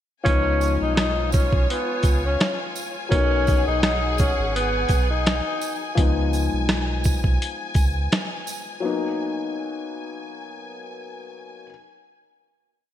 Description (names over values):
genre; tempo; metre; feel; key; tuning
hip hop, boom-bap hip-hop; 84 BPM; 4/4; swing 56% on 16ths; G# dorian; A4 = 440 Hz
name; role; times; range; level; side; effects
breathy tenor saxophone; melody; 0.2-5.9 s; B3 to D#4; -24 LUFS; left 1 dB; high-pass filter, low-pass filter, ping-pong delay
dark upright piano; accompaniment; 0.2-11.7 s; E#3 to A#4; -29 LUFS; left 5 dB; cassette tape, high-pass filter, low-pass filter
clear studio string section; sustained chords; 0.3-11.6 s; E#4 to G#5; -31 LUFS; left 2 dB; high-pass filter, low-pass filter
sub bass with octave; bass; 0.3-8.1 s; G#1 to C#2; -25 LUFS; right 1 dB; none
boom bap sampler-style drum kit; drums; 0.3-8.7 s; hi-hat, kick drum, rim click, shaker, snare drum; -22 LUFS; right 1 dB; gated reverb
tambourine; percussion; 0.6-8.7 s; none; -39 LUFS; right 10 dB; none
room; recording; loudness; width
light reverb, studio reverb; bright 1980s-style digital production; -20 LUFS; side -11 dB against mid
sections
0.3-11.7 hook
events
none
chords
0.3 C#7; 3.1 G#m7; 6.0 C#7; 8.8 G#m7